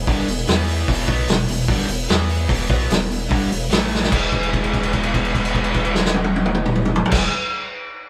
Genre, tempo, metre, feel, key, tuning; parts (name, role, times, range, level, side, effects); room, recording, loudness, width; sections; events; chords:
blues rock power trio and southern rock; 148 BPM; 4/4; straight; E major; A4 = 441 Hz
overdriven tonewheel organ; sustained chords; 0.0-7.3 s; E3 to A4; -35 LUFS; equal
distorted electric guitar; riff; 0.0-7.3 s; E2 to G#4; -26 LUFS; equal; distortion
pure sine sub bass; bass; 0.0-7.3 s; E1 to E2; -28 LUFS; equal
vintage drum kit; drums; 0.1-7.2 s; crash cymbal, hi-hat, kick drum, snare drum, toms; -22 LUFS; equal
light reverb; band playing live in one room; -19 LUFS; mono
0.0-4.1 A section; 4.1-7.4 B section
drum fill 3.9; held note 4.1-7.1
0.0 E; 3.7 A5; 4.1 E